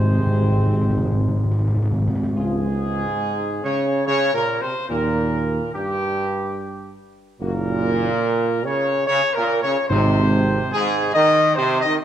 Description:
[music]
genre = classical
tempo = 72 BPM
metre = 3/4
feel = straight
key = unclear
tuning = A4 = 438 Hz
[part]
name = dark trumpet section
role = melody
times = 0.0-11.9 s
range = G4 to Eb5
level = -22 LUFS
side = left 1 dB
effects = none
[part]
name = clear trombone section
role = sustained chords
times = 0.0-12.0 s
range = G2 to Ab3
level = -24 LUFS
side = right 3 dB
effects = none
[part]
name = mellow French horn section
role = sustained chords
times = 0.0-10.2 s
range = F3 to G4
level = -32 LUFS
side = left 4 dB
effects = none
[part]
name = dark tuba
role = bass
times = 0.0-10.6 s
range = Gb1 to Eb2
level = -23 LUFS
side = right 2 dB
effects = none
[part]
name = timpani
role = percussion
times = 0.0-2.3, 9.9-11.1 s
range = Ab2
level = -21 LUFS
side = equal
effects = none
[sound]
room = moderate concert hall reverb, RT60 1.9 s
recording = close, detailed microphones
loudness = -18 LUFS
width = side -10 dB against mid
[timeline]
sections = 0.0-2.4 A section; 2.4-12.0 B section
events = timpani fill 0.0-2.4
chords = 0.0 Ab; 2.4 Db; 4.9 Eb; 7.4 Gb; 9.9 Ab

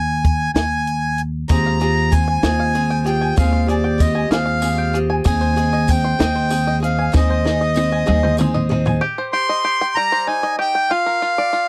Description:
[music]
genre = indie folk with a building arrangement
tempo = 64 BPM (dotted quarters)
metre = 6/8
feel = straight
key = unclear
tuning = A4 = 440 Hz
[part]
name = accordion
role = melody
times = 0.0-11.7 s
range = D5 to C6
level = -22 LUFS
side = equal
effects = none
[part]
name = upright bass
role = bass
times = 0.0-9.0 s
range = Eb2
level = -22 LUFS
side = equal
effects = none
[part]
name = compact cocktail drum kit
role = drums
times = 0.2-9.0 s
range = hi-hat, kick drum, snare drum, toms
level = -21 LUFS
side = equal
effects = none
[part]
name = picked acoustic archtop guitar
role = accompaniment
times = 1.5-9.0 s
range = Eb3 to Ab4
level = -27 LUFS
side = equal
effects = none
[part]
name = bluegrass banjo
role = arpeggios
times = 1.5-11.7 s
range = G3 to C6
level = -28 LUFS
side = equal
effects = none
[part]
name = tambourine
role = percussion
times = 1.5-8.9 s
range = none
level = -41 LUFS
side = equal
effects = none
[sound]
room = little or no reverb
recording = dry, close 1970s-style studio recording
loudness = -18 LUFS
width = mono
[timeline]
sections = 0.0-9.0 A section; 9.0-11.7 B section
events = drum fill 7.1-9.0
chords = 0.0 Ab5/Eb; 1.5 Fmadd9/Eb; 5.3 Ab/Eb; 9.0 Cm; 10.9 Bb

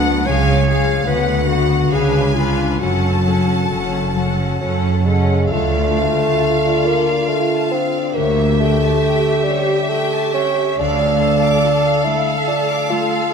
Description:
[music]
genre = classical, slow romantic movement for symphony orchestra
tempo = 64-77 BPM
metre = 3/4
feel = rubato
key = F# minor, D minor from 5.5 s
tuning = A4 = 436 Hz
[part]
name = rich symphonic violin section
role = melody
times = 0.0-13.3 s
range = E5 to F#5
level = -24 LUFS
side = left 3 dB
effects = none
[part]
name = bright symphonic violin section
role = second line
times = 0.0-13.3 s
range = A4 to D6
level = -26 LUFS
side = left 3 dB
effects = none
[part]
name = warm clarinet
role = second line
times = 0.0-4.6 s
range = D4 to C#5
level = -22 LUFS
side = left 2 dB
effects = none
[part]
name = rich studio viola section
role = accompaniment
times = 0.0-13.3 s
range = G#3 to B4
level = -24 LUFS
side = right 1 dB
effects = none
[part]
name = concert harp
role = arpeggios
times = 0.0-13.3 s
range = F#2 to B4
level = -22 LUFS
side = left 6 dB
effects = none
[part]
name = rich symphonic cello section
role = bass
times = 0.0-11.5 s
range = C#2 to F#2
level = -22 LUFS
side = right 3 dB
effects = none
[part]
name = rich symphonic double bass section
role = bass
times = 0.0-11.5 s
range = F#1 to D2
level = -23 LUFS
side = right 3 dB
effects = none
[part]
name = mellow bassoon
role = accompaniment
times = 4.6-13.3 s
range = F#3 to F4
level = -18 LUFS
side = right 2 dB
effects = none
[sound]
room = wet scoring stage reverb, RT60 1.6 s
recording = none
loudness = -14 LUFS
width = side -6 dB against mid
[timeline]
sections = 0.0-5.5 A section; 5.5-13.3 B section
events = none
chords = 0.3 C#; 1.1 Bm/D; 1.9 C#7b9; 2.8 F#m; 5.5 Dm; 8.2 A7/D; 10.8 Dm

